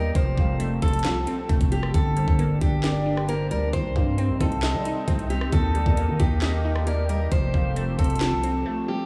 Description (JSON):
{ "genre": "hip hop, trap", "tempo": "134 BPM", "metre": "4/4", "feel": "half-time", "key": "unclear", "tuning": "A4 = 444 Hz", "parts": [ { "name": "fingerpicked steel-string acoustic guitar", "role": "melody", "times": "0.0-9.1 s", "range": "G4 to C5", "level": "-32 LUFS", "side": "equal", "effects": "low-pass filter, tape echo" }, { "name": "hollow clarinet-like synth lead", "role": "second line", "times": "0.0-7.8 s", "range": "C5 to F5", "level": "-40 LUFS", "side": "equal", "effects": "chorus, tape echo" }, { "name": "glassy wavetable pluck", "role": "accompaniment", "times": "0.0-9.1 s", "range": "D3 to Eb5", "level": "-33 LUFS", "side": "equal", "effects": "chorus, low-pass filter" }, { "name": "sweeping resonant pad", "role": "sustained chords", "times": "0.0-9.1 s", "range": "C3 to A4", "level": "-36 LUFS", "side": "equal", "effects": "chorus" }, { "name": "growling 808-style bass", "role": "bass", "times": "0.0-8.6 s", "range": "F1 to G3", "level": "-28 LUFS", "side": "equal", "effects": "none" }, { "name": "trap drum kit", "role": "drums", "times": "0.2-8.5 s", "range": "handclaps, hi-hat, kick drum, rim click, snare drum", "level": "-27 LUFS", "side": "equal", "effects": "overdrive" } ], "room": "moderate cathedral reverb, RT60 5.3 s", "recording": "dreamy mix soaked in reverb, small room ambience", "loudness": "-23 LUFS", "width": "mono", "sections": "0.0-9.1 A section", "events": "break 8.7-9.1", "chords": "0.2 Fadd9; 1.9 Gm; 3.7 Cm; 5.5 Eb; 7.3 Fadd9" }